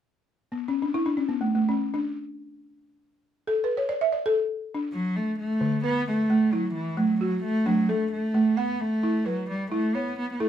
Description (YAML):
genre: west african traditional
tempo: free time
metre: none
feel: none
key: D major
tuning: A4 = 437 Hz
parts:
  - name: balafon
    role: arpeggios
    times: 0.5-10.5 s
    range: D3 to F#5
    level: -25 LUFS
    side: right 1 dB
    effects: none
  - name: warm cello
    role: melody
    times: 4.9-10.5 s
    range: E3 to B3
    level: -25 LUFS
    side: equal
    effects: plate reverb
room: moderate studio reverb, RT60 0.6 s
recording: none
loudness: -23 LUFS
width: side -10 dB against mid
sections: 0.1-5.6 A section; 5.6-10.5 B section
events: balafon solo 0.1-5.6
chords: 0.1 N.C.; 5.6 D; 8.3 A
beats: free time